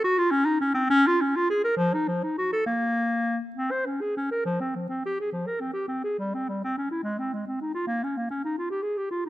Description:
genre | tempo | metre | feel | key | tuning
classical, baroque-style fantasia for unaccompanied clarinet | 65-72 BPM (dotted quarters) | 6/8 | rubato | Bb minor, F minor from 4.5 s | A4 = 440 Hz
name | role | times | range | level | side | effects
clear clarinet | solo | 0.0-9.3 s | F3 to C5 | -24 LUFS | equal | none
room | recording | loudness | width
moderate recital hall reverb, RT60 1.6 s | close, detailed microphones | -24 LUFS | side -15 dB against mid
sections
0.0-4.5 A section; 4.5-9.3 A section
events
none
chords
none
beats
0.03 | 0.90 1.77 | 2.65 3.55 | 4.45 5.30 | 6.18 7.04 | 7.88 8.71

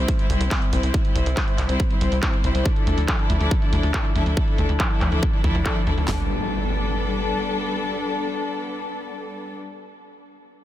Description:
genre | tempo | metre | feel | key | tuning
uplifting trance | 140 BPM | 4/4 | straight | G mixolydian | A4 = 438 Hz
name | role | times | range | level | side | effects
warm studio string section | sustained chords | 0.0-9.6 s | F3 to C5 | -26 LUFS | left 2 dB | sidechain pumping
tight sequencer bass | bass | 0.0-7.3 s | G1 to D2 | -23 LUFS | equal | sidechain pumping
big-room dance drum kit | drums | 0.1-6.2 s | handclaps, kick drum, snare drum, toms | -22 LUFS | equal | none
punchy analog drum machine | drums | 0.1-6.1 s | handclaps, hi-hat | -31 LUFS | equal | sidechain pumping on hats, low-pass filter on hats, low-pass filter on snare
impact | sound effects | 6.1-9.6 s | none | -31 LUFS | equal | none
room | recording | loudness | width
light reverb, digital ambience | dense, heavily limited modern master | -20 LUFS | side -13 dB against mid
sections
0.0-6.1 A section; 6.1-9.5 B section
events
none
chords
0.0 C; 2.7 Dmadd9; 6.1 Gadd9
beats
0.08 0.51 | 0.94 1.37 1.80 2.23 | 2.65 3.08 3.51 3.94 | 4.37 4.80 5.23 5.66 | 6.08 6.51 6.94 7.37 | 7.80 8.23 8.65 9.08

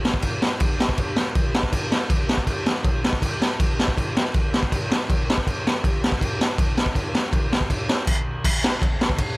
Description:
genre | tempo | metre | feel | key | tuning
punk | 161 BPM | 4/4 | straight | none | none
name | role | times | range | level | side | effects
raw garage drum kit | drums | 0.1-9.3 s | crash cymbal, kick drum, ride cymbal, snare drum | -20 LUFS | equal | none
room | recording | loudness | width
little or no reverb | none | -20 LUFS | side -25 dB against mid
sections
0.0-8.4 A section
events
none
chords
none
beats
0.24 0.61 | 0.99 1.36 1.74 2.11 | 2.48 2.86 3.23 3.60 | 3.98 4.35 4.72 5.10 | 5.47 5.84 6.21 6.59 | 6.96 7.33 7.70 8.07 | 8.45 8.82 9.19

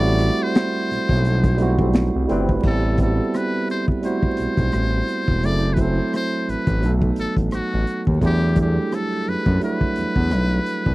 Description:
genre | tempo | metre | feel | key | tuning
R&B, neo-soul | 86 BPM | 4/4 | swing 58% on 16ths | A dorian | A4 = 440 Hz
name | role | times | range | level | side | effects
trumpet with metal mute | melody | 0.0-10.9 s | F#4 to D5 | -27 LUFS | left 2 dB | none
tine electric piano | accompaniment | 0.0-10.9 s | F#3 to B4 | -23 LUFS | right 3 dB | none
smooth synth bass | bass | 0.0-10.9 s | E1 to F#2 | -20 LUFS | equal | none
crunchy breakbeat drum kit | drums | 0.2-10.9 s | crash cymbal, finger snaps, hi-hat, kick drum, rim click, snare drum | -21 LUFS | equal | none
dark trombone section | stabs | 1.8-2.5 s | A2 to C4 | -26 LUFS | left 4 dB | none
room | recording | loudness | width
little or no reverb | dry, close 1970s-style studio recording, vinyl crackle | -18 LUFS | side -19 dB against mid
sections
0.0-2.6 A section; 2.6-10.9 B section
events
band accent 0.0-2.6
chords
0.0 Am7; 2.6 Am9; 5.4 F#m7b5; 6.8 B7; 8.2 Em11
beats
0.54 1.24 1.94 | 2.63 3.33 4.03 4.72 | 5.42 6.12 6.82 7.52 | 8.21 8.91 9.61 10.31

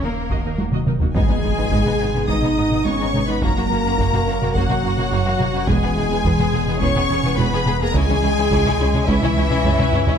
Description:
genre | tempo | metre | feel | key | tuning
cinematic, hybrid orchestral and electronic film score | 106 BPM | 4/4 | straight | G# minor | A4 = 440 Hz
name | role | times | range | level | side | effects
clear symphonic violin section | melody | 0.0-10.2 s | A#4 to D#6 | -26 LUFS | left 4 dB | none
warm symphonic violin section | second line | 0.0-10.1 s | A#3 to A#4 | -27 LUFS | left 2 dB | none
rich symphonic viola section | accompaniment | 0.0-10.2 s | A#3 to D#5 | -27 LUFS | right 2 dB | none
harp-like synth pluck | arpeggios | 0.0-10.2 s | C#3 to G#4 | -27 LUFS | equal | chorus, ping-pong delay
rich symphonic double bass section | bass | 0.0-10.0 s | E1 to D#2 | -25 LUFS | right 3 dB | none
sub bass with octave | bass | 0.0-10.2 s | D#1 to C#2 | -26 LUFS | equal | none
warm symphonic cello section | bass | 0.0-10.1 s | C#2 to A#3 | -27 LUFS | right 3 dB | none
solo taiko drums | drums | 0.3-10.2 s | none | -24 LUFS | equal | none
mellow French horn section | sustained chords | 1.2-10.2 s | E3 to D#4 | -24 LUFS | left 2 dB | none
impact | sound effects | 1.2-3.4 s | none | -25 LUFS | equal | none
room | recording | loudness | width
moderate scoring stage reverb, RT60 1.6 s | dark, warm production | -16 LUFS | side -8 dB against mid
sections
0.0-1.2 A section; 1.2-10.2 B section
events
drum fill 0.6-1.2, 9.7-10.2; impact 1.2-3.4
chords
0.0 D#m; 1.2 G#m; 3.4 F#; 5.7 E; 8.0 C#m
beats
0.03 0.59 | 1.16 1.73 2.29 2.86 | 3.42 3.99 4.56 5.12 | 5.69 6.25 6.82 7.39 | 7.95 8.52 9.08 9.65

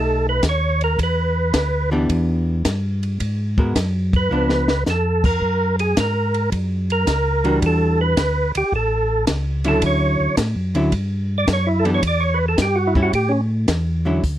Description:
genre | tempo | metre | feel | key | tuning
soul jazz organ trio | 109 BPM | 4/4 | swing 68% on 8ths | unclear | A4 = 440 Hz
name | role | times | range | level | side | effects
percussive tonewheel organ | melody | 0.0-13.4 s | C#4 to D5 | -20 LUFS | right 1 dB | overdrive, chorus vibrato, stopped rotary speaker
archtop guitar, miked and amplified | accompaniment | 0.0-14.2 s | D3 to A#4 | -20 LUFS | equal | none
mellow tonewheel organ | bass | 0.0-14.4 s | A1 to A2 | -21 LUFS | equal | slow rotary speaker
compact cocktail drum kit | drums | 0.4-14.4 s | crash cymbal, hi-hat, kick drum, ride cymbal, snare drum | -23 LUFS | equal | none
room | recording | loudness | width
light reverb | dry, close 1970s-style studio recording | -17 LUFS | side -12 dB against mid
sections
0.0-14.2 A section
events
tonewheel organ solo 0.0-14.2; drum fill 4.3-4.9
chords
0.0 B7b13; 1.0 Em7; 3.2 G#m9; 4.3 C#7b9; 5.4 F#add9; 7.6 Em9; 8.7 A; 9.8 Dmaj9; 12.0 Em; 13.1 A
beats
0.43 | 0.98 1.54 2.09 2.65 | 3.20 3.75 4.31 4.86 | 5.41 5.97 6.52 7.07 | 7.62 8.17 8.73 9.28 | 9.83 10.38 10.93 11.48 | 12.03 12.58 13.13 13.68 | 14.23

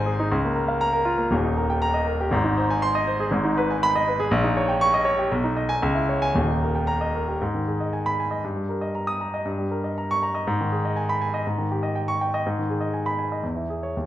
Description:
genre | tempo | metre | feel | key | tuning
classical, virtuoso piano study | 120 BPM | 2/4 | rubato | Ab major, G# minor from 3.3 s | A4 = 440 Hz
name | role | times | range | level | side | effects
warm grand piano | solo | 0.0-14.1 s | Eb1 to D#6 | -21 LUFS | equal | none
room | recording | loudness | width
moderate recital hall reverb, RT60 1.4 s | none | -21 LUFS | side -13 dB against mid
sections
0.0-7.4 A section; 7.4-14.1 B section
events
none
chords
0.3 Bbm/Db; 1.3 Eb; 2.3 Ab; 3.3 G#m; 4.3 D#7/A#; 5.3 G#m/B; 5.8 C#m; 6.3 D#; 7.4 G#m; 8.4 D#/G; 9.4 D#7/G; 10.5 G#m; 11.5 D#7/G#; 12.4 G#m; 13.4 C#m/E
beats
| 0.32 0.82 | 1.32 1.82 | 2.32 2.81 | 3.31 3.80 | 4.29 4.79 | 5.29 5.81 | 6.33 6.87 | 7.40 7.91 | 8.42 8.93 | 9.44 9.95 | 10.45 10.96 | 11.45 11.95 | 12.44 12.93 | 13.43 13.94

